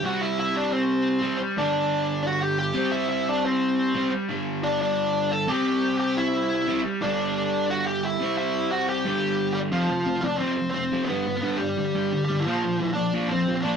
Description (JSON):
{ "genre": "punk", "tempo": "177 BPM", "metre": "4/4", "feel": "straight", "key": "unclear", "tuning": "A4 = 440 Hz", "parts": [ { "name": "smooth overdriven lead guitar", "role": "melody", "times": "0.0-13.8 s", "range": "F3 to A5", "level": "-25 LUFS", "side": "equal", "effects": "none" }, { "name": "overdriven semi-hollow guitar", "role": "riff", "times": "0.0-13.8 s", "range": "F2 to C4", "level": "-26 LUFS", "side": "equal", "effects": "none" } ], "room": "light reverb", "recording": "rough rehearsal-room recording, tube saturation", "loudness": "-22 LUFS", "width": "side -7 dB against mid", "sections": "0.0-9.7 A section; 9.7-13.8 B section", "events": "none", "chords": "0.0 C; 1.6 G5; 2.8 C; 4.3 G5; 5.5 C; 7.0 G5; 8.2 C; 9.0 G5; 9.7 F5; 11.1 G; 12.5 Bb", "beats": "| 0.22 0.56 0.89 1.23 | 1.57 1.91 2.25 2.59 | 2.93 3.27 3.61 3.95 | 4.29 4.63 4.97 5.31 | 5.65 5.99 6.33 6.67 | 7.01 7.35 7.68 8.03 | 8.36 8.70 9.04 9.38 | 9.72 10.06 10.41 10.75 | 11.09 11.43 11.77 12.11 | 12.45 12.79 13.13 13.47" }